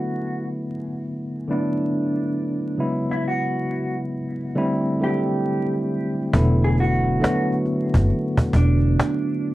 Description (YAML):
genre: lo-fi hip hop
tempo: 68 BPM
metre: 4/4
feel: swing 64% on 16ths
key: unclear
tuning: A4 = 439 Hz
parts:
  - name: mellow electric guitar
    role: melody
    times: 0.0-9.5 s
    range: D4 to G#4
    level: -27 LUFS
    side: right 2 dB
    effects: lush chorus, low-pass filter, analog delay
  - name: tine electric piano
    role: accompaniment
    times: 0.0-9.5 s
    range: C#3 to F#4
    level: -23 LUFS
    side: equal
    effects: fast stereo tremolo, low-pass filter
  - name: upright bass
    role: bass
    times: 6.3-8.9 s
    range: E1 to F#1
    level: -19 LUFS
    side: equal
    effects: transformer saturation
  - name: cajon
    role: drums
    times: 6.3-9.3 s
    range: none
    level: -22 LUFS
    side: equal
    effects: none
room: moderate small room reverb, RT60 0.6 s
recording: worn, warbling old tape, cassette tape, vinyl crackle, warbly pitch drift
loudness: -20 LUFS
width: side -17 dB against mid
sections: 0.0-6.3 A section; 6.3-9.5 B section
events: filter sweep 0.0-6.3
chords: 0.0 E9sus4; 2.8 F#9sus4; 4.6 D9sus4; 6.3 E9sus4